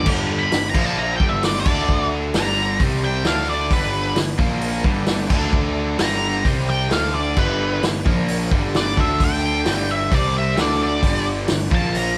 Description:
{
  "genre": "blues rock power trio and southern rock",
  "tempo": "131 BPM",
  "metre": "4/4",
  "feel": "straight",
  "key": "G major",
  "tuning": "A4 = 440 Hz",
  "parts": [
    { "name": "octave-fuzz lead guitar", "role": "melody", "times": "0.0-12.2 s", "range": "B4 to B5", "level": "-25 LUFS", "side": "equal", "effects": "wah, distortion" },
    { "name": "overdriven tonewheel organ", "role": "sustained chords", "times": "0.0-12.2 s", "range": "F3 to F5", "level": "-36 LUFS", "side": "equal", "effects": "none" },
    { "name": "cranked stack guitar", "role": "riff", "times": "0.0-12.2 s", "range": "G2 to D4", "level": "-27 LUFS", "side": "equal", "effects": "overdrive" },
    { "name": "fuzz picked electric bass", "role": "bass", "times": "0.0-12.1 s", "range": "G1 to D2", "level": "-27 LUFS", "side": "equal", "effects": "overdrive" },
    { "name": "vintage drum kit", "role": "drums", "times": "0.1-12.1 s", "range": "crash cymbal, hi-hat, kick drum, snare drum", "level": "-24 LUFS", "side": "equal", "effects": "none" }
  ],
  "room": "moderate stone room reverb, RT60 1.1 s",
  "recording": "band playing live in one room",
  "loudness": "-20 LUFS",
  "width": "mono",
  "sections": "0.1-12.2 A section",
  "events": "lead electric guitar solo 0.0-12.2",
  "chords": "0.1 G; 0.7 Bb5; 1.2 G; 1.7 D5; 2.3 G; 2.8 C5; 3.3 D5; 3.7 G; 4.4 Bb5; 4.8 G; 5.3 D5; 6.0 G; 6.5 C5; 6.9 D5; 7.4 G; 8.1 Bb5; 8.5 G; 9.0 D5; 9.7 G; 10.1 C5; 10.6 D5; 11.0 G; 11.7 Bb5",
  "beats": "| 0.06 0.52 0.97 1.43 | 1.89 2.34 2.80 3.25 | 3.71 4.17 4.62 5.08 | 5.54 5.99 6.45 6.91 | 7.37 7.82 8.28 8.74 | 9.20 9.66 10.12 10.58 | 11.04 11.49 11.95"
}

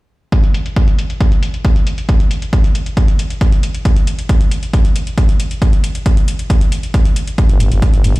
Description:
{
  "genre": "driving peak-time techno",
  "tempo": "136 BPM",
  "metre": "4/4",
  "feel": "straight",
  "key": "unclear",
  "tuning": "A4 = 440 Hz",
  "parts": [
    { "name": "electronic hi-hat", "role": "drums", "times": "0.3-8.2 s", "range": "none", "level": "-29 LUFS", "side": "left 1 dB", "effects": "sidechain pumping on hats, low-pass filter on hats, low-pass filter on room" },
    { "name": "electronic kick drum", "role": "drums", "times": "0.3-7.9 s", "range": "none", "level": "-12 LUFS", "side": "equal", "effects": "none" },
    { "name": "growling FM bass", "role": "bass", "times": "7.5-8.2 s", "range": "G1", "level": "-12 LUFS", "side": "equal", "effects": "sidechain pumping" }
  ],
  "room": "little or no reverb",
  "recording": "played on a big sound system in a bare room, large studio reverb",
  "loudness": "-12 LUFS",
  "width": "side -20 dB against mid",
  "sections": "0.3-8.2 A section",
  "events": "none",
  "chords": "none",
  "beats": "| 0.32 0.77 1.21 1.65 | 2.09 2.53 2.97 3.41 | 3.85 4.29 4.74 5.18 | 5.62 6.06 6.50 6.94 | 7.38 7.82"
}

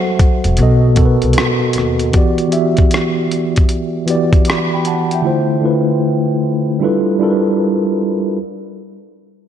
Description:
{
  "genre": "lo-fi hip hop",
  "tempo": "77 BPM",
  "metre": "4/4",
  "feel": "swing 65% on 16ths",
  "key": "G major",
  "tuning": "A4 = 440 Hz",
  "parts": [
    { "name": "mellow tine electric piano", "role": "accompaniment", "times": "0.0-8.4 s", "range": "B2 to D6", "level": "-14 LUFS", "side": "equal", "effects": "fast stereo tremolo, low-pass filter" },
    { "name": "dusty soul sampler-style drum kit", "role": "drums", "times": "0.2-5.2 s", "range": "hi-hat, kick drum, rim click", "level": "-15 LUFS", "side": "equal", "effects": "vintage 12-bit sampler grit" },
    { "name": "upright bass", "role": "bass", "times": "0.4-2.1 s", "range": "E1 to D#2", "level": "-15 LUFS", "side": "left 1 dB", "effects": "none" }
  ],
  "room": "moderate lush hall reverb, RT60 1.9 s",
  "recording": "dreamy mix soaked in reverb",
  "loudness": "-12 LUFS",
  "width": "side -9 dB against mid",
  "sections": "0.0-8.4 A section",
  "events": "none",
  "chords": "0.0 F#m7b5; 0.6 B7; 2.1 Em9; 5.3 Dm9; 6.8 G13",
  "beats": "0.58 1.36 | 2.14 2.92 3.70 4.48 | 5.26 6.04 6.82 7.59"
}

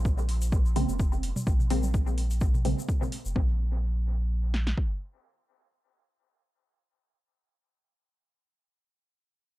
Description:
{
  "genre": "dub techno",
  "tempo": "127 BPM",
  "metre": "4/4",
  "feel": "swing 55% on 16ths",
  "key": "Bb minor",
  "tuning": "A4 = 439 Hz",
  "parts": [
    { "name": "warm sub bass", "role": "bass", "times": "0.0-4.7 s", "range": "F1 to Bb1", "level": "-28 LUFS", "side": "equal", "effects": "sidechain pumping" },
    { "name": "egg shaker", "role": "percussion", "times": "0.0-3.3 s", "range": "none", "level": "-45 LUFS", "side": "left 4 dB", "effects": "none" },
    { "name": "deep house drum kit", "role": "drums", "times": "0.1-4.9 s", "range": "kick drum, snare drum", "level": "-26 LUFS", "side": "equal", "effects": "overdrive" },
    { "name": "electronic hi-hat", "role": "drums", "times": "0.3-3.2 s", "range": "none", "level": "-42 LUFS", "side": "right 1 dB", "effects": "overdrive, dub echo" },
    { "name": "filtered dub chord stab", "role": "stabs", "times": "0.8-7.3 s", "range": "Db3 to C4", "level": "-34 LUFS", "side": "equal", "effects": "phaser, sidechain pumping, dub echo" },
    { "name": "electronic toms and congas", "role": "percussion", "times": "1.4-3.1 s", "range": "none", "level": "-36 LUFS", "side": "right 1 dB", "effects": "sidechain pumping on toms, sidechain pumping on perc, dub echo" }
  ],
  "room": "digital ambience",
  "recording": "dark, warm production",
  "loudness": "-25 LUFS",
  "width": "side -16 dB against mid",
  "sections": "0.0-3.4 A section; 3.4-7.1 B section",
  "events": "none",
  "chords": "0.0 Bbm9",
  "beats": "0.05 0.52 1.00 | 1.47 1.94 2.41 2.89 | 3.36 3.83 4.30 4.78 | 5.25 5.72 6.19 6.67"
}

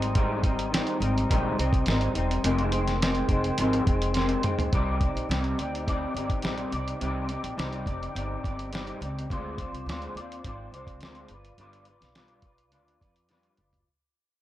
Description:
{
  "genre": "indie pop, bedroom pop",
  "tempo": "105 BPM",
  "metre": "4/4",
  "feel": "straight",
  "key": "C minor",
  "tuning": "A4 = 440 Hz",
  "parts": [
    { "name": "electric guitar through a small old amp", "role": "accompaniment", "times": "0.0-13.9 s", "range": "F2 to D5", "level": "-29 LUFS", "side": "left 1 dB", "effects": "ensemble chorus, vibrato effect" },
    { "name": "upright bass", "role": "bass", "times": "0.0-13.8 s", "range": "E1 to F2", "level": "-30 LUFS", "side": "equal", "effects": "none" },
    { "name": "lo-fi sampler-style drum kit", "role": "drums", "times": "0.0-13.9 s", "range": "hi-hat, kick drum, snare drum, toms", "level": "-29 LUFS", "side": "equal", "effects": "none" }
  ],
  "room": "little or no reverb",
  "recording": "none",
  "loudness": "-25 LUFS",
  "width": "side -14 dB against mid",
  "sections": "0.0-4.7 A section; 4.7-13.9 B section",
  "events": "drum fill 4.1-4.7, 13.3-13.9; fade-out 4.7-13.9",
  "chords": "0.0 Abmaj7; 2.4 Fm7; 4.7 Cmadd9; 9.3 Dm7b5; 11.3 G7",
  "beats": "| 0.15 0.72 1.29 1.86 | 2.44 3.01 3.58 4.15 | 4.72 5.29 5.86 6.43 | 7.01 7.58 8.15 8.72 | 9.29 9.87 10.44 11.01 | 11.58 12.15 12.72 13.30"
}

